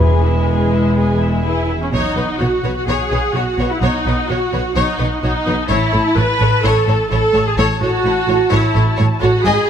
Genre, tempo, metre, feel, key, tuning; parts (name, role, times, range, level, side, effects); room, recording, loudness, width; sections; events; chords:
cinematic, heroic adventure film score; 128 BPM; 4/4; straight; A4 = 438 Hz
warm studio violin section; melody; 0.0-9.7 s; E5 to B5; -28 LUFS; left 5 dB
rich chamber violin section; second line; 0.0-9.7 s; E4 to G#5; -23 LUFS; left 3 dB
clear symphonic viola section; accompaniment; 0.0-9.7 s; G#3 to B4; -17 LUFS; equal
warm French horn section; sustained chords; 0.0-1.6 s; E3 to B4; -22 LUFS; left 2 dB
rich studio double bass section; bass; 0.0-9.5 s; E1 to B1; -19 LUFS; right 2 dB
rich symphonic cello section; bass; 0.0-9.5 s; E2 to B2; -22 LUFS; right 1 dB
timpani; percussion; 0.0-0.7 s; E2; -18 LUFS; left 2 dB
light reverb; -14 LUFS; side -8 dB against mid
0.0-1.9 A section; 1.9-9.7 B section
0.0 E; 1.9 Badd9; 5.7 A